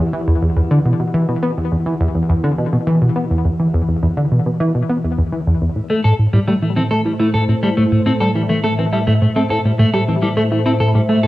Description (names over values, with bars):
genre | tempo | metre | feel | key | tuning
ambient, sequencer-driven space music | 104 BPM | 4/4 | straight | E minor, A dorian from 5.8 s | A4 = 440 Hz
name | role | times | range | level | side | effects
sweeping resonant pad | sustained chords | 0.0-11.3 s | A2 to F#5 | -20 LUFS | equal | chorus, cassette tape
plucky analog bass | riff | 0.0-11.3 s | E2 to E4 | -16 LUFS | equal | wide subtle chorus, cassette tape, ping-pong delay
semi-hollow electric guitar | arpeggios | 5.9-11.3 s | G3 to A4 | -18 LUFS | equal | auto-pan, cassette tape, ping-pong delay, shimmer reverb
room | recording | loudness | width
wet studio reverb, RT60 0.5 s | home recording on cassette | -14 LUFS | side -16 dB against mid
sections
0.0-5.8 A section; 5.8-11.3 B section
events
none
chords
0.0 Emadd9; 5.8 Am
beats
0.56 | 1.14 1.72 2.29 2.87 | 3.45 4.02 4.60 5.18 | 5.75 6.33 6.91 7.49 | 8.06 8.64 9.21 9.79 | 10.37 10.95